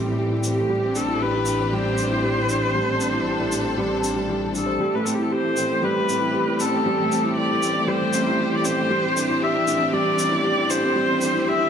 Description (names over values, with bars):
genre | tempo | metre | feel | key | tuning
piano and strings electronica | 117 BPM | 4/4 | straight | A minor | A4 = 440 Hz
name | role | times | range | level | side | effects
clear symphonic string section | sustained chords | 0.0-11.7 s | E3 to A4 | -29 LUFS | left 1 dB | low-pass filter
felt-muted upright piano | riff | 0.0-11.7 s | G3 to C5 | -23 LUFS | right 1 dB | none
rich symphonic double bass section | bass | 0.0-11.4 s | A1 to A2 | -30 LUFS | equal | high-pass filter
shaker | drums | 0.4-11.3 s | none | -31 LUFS | left 1 dB | none
rich viola | melody | 0.5-11.7 s | G4 to E5 | -23 LUFS | left 2 dB | none
room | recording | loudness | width
moderate echo chamber reverb, RT60 2.1 s | none | -19 LUFS | side -7 dB against mid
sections
0.0-4.8 A section; 4.8-11.7 B section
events
build-up 4.8-11.7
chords
0.0 Am7; 0.7 Cadd9/A; 4.8 Am7; 8.9 Cadd9/A